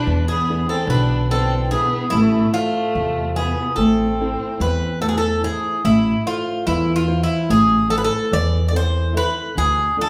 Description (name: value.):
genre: greek folk, Greek bouzouki band.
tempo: 145 BPM (eighths).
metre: 9/8.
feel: straight.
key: A harmonic minor.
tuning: A4 = 441 Hz.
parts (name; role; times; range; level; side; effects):
Greek bouzouki; melody; 0.0-10.1 s; E4 to D5; -23 LUFS; equal; none.
rich violin; second line; 0.0-5.0 s; A3 to D4; -28 LUFS; equal; none.
nylon-string guitar; accompaniment; 0.0-10.1 s; C3 to E5; -24 LUFS; equal; none.
upright bass; bass; 0.1-9.9 s; A1 to E2; -25 LUFS; equal; none.
room: wet large studio reverb, RT60 1.4 s.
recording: band playing live in one room.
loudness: -19 LUFS.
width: mono.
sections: 0.0-5.8 A section; 5.8-10.1 A section.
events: none.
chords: 0.0 E7; 2.1 Am; 9.6 Dm.